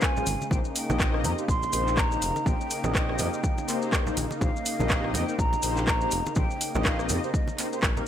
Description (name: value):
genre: afro house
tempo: 123 BPM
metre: 4/4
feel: swing 58% on 16ths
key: unclear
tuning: A4 = 437 Hz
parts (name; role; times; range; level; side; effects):
- breathy mellow jazz flute; melody; 0.0-7.8 s; Eb5 to C6; -32 LUFS; right 2 dB; dub echo
- warm analog pad; sustained chords; 0.0-8.1 s; Db3 to Eb4; -34 LUFS; left 1 dB; chorus, sidechain pumping
- mellow synth brass; stabs; 0.0-8.0 s; Bb3 to Eb5; -32 LUFS; left 3 dB; chorus, sidechain pumping, tape echo
- afro-pop drum kit; drums; 0.0-7.9 s; handclaps, hi-hat, rim click; -30 LUFS; right 1 dB; none
- electronic kick drum; drums; 0.0-7.9 s; none; -27 LUFS; equal; overdrive
- congas; percussion; 0.0-8.1 s; none; -33 LUFS; right 2 dB; none
- maracas; percussion; 0.0-8.1 s; none; -36 LUFS; left 4 dB; none
- smooth synth bass; bass; 0.3-7.9 s; F1 to F2; -31 LUFS; equal; tube saturation, sidechain pumping
room: light reverb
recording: none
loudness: -24 LUFS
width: side -10 dB against mid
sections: 0.0-8.1 A section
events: none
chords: 0.0 Bbm9; 0.5 Cm7